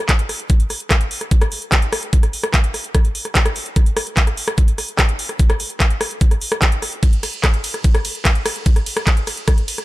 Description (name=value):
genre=trance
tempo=147 BPM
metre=4/4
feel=straight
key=none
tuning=none
part: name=drum and bass drum kit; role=drums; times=0.1-9.8 s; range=handclaps, hi-hat, ride cymbal, rim click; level=-20 LUFS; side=equal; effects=none
part: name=electronic kick drum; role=drums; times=0.1-9.6 s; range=none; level=-15 LUFS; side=equal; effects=none
room=little or no reverb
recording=none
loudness=-15 LUFS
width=side -18 dB against mid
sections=0.0-9.8 A section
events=none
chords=none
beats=0.09 | 0.50 0.91 1.31 1.72 | 2.13 2.54 2.95 3.35 | 3.76 4.17 4.58 4.99 | 5.39 5.80 6.21 6.62 | 7.03 7.44 7.84 8.25 | 8.66 9.07 9.48